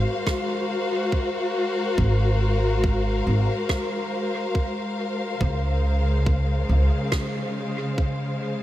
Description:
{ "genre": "ambient dub", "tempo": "70 BPM", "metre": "4/4", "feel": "straight", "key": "Ab mixolydian", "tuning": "A4 = 440 Hz", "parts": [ { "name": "warm symphonic string section", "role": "sustained chords", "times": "0.0-8.6 s", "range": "Db3 to F5", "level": "-25 LUFS", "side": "left 1 dB", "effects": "none" }, { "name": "upright bass", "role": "bass", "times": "0.0-6.9 s", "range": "Ab1 to Db2", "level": "-21 LUFS", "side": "equal", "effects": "none" }, { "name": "electronic kick drum", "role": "drums", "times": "0.3-8.2 s", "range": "none", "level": "-24 LUFS", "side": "equal", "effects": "studio reverb" }, { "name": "rim click", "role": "drums", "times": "0.3-7.3 s", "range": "none", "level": "-33 LUFS", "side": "right 2 dB", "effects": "studio reverb, dub echo" } ], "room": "light reverb", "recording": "none", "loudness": "-21 LUFS", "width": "side -14 dB against mid", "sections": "0.0-8.6 A section", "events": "none", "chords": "0.0 Ab13; 5.4 Dbmaj7" }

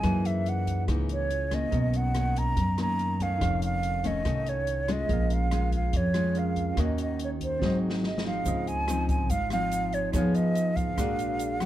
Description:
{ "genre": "bossa nova", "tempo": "143 BPM", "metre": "4/4", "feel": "straight", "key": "Bb minor, Db major from 8.5 s", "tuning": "A4 = 443 Hz", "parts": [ { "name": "breathy mellow silver concert flute", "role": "melody", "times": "0.0-11.7 s", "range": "C5 to A#5", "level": "-31 LUFS", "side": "right 2 dB", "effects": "none" }, { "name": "bell-like tine electric piano", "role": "accompaniment", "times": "0.0-11.7 s", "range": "B3 to F5", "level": "-37 LUFS", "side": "right 6 dB", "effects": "none" }, { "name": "nylon-string guitar", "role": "accompaniment", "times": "0.0-11.7 s", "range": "F2 to Ab4", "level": "-31 LUFS", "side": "left 3 dB", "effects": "none" }, { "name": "upright bass", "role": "bass", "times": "0.0-11.7 s", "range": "F1 to Gb2", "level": "-29 LUFS", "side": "equal", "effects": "none" }, { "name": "open jazz drum kit", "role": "drums", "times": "0.0-11.7 s", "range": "hi-hat, kick drum, rim click, snare drum", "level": "-34 LUFS", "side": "equal", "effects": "none" }, { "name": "egg shaker", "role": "percussion", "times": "8.5-11.7 s", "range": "none", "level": "-45 LUFS", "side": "right 8 dB", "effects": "none" } ], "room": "moderate studio reverb, RT60 0.7 s", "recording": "dark, warm production", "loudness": "-25 LUFS", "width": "side -13 dB against mid", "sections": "0.0-8.5 A section; 8.5-11.7 B section", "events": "drum fill 7.6-8.5", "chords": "0.0 Gb13; 1.7 Bmaj9; 3.4 F7b13; 5.1 Bbm7; 6.8 Ebm7; 7.6 Ab7; 8.5 Dbmaj9; 10.1 Fm7b5; 11.0 Bb7b13" }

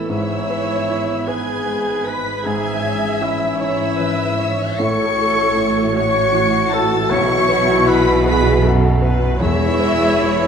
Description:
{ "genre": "cinematic, emotional film score for orchestra", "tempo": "52 BPM (dotted quarters)", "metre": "6/8", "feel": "rubato", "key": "E major", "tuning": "A4 = 441 Hz", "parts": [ { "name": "rich studio violin section", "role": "melody", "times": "0.0-10.5 s", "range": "E6 to C#7", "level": "-27 LUFS", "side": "left 4 dB", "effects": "none" }, { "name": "clear clarinet", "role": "second line", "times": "0.0-10.5 s", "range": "E4 to C#5", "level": "-25 LUFS", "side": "left 1 dB", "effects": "none" }, { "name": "mellow cor anglais", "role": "second line", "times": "0.0-10.5 s", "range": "E4 to C#5", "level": "-25 LUFS", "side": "right 3 dB", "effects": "none" }, { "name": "rich studio violin section", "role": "second line", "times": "0.0-10.5 s", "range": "E5 to C#6", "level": "-26 LUFS", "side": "left 2 dB", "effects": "none" }, { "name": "felt-muted upright piano", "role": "accompaniment", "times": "0.0-10.5 s", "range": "B1 to C#5", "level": "-25 LUFS", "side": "equal", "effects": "none" }, { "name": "rich studio viola section", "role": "accompaniment", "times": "0.0-10.5 s", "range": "E4 to E5", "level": "-24 LUFS", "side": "right 3 dB", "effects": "none" }, { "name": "mellow French horn section", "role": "sustained chords", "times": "0.0-10.4 s", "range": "E3 to G#4", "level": "-24 LUFS", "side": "left 3 dB", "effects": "none" }, { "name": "concert harp", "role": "arpeggios", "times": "0.0-10.5 s", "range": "G#2 to F#5", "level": "-28 LUFS", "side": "left 6 dB", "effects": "none" }, { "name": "rich studio cello section", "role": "bass", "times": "0.0-10.5 s", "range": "E2 to B2", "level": "-24 LUFS", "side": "right 2 dB", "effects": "none" }, { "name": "warm studio double bass section", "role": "bass", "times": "0.0-10.5 s", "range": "E1 to B1", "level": "-24 LUFS", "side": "right 3 dB", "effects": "none" }, { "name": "mellow flute section", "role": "second line", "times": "0.1-10.5 s", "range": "E5 to C#6", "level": "-26 LUFS", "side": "left 3 dB", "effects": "none" }, { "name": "timpani", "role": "percussion", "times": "7.1-10.5 s", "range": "E2 to B2", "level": "-26 LUFS", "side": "left 1 dB", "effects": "none" } ], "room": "wet scoring stage reverb, RT60 1.6 s", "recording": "minimal, uncompressed stereo recording", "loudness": "-15 LUFS", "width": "side -7 dB against mid", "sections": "0.0-10.5 A section", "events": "none", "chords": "0.1 E/G#; 4.8 F#m7/A; 7.1 Bsus4; 9.4 E" }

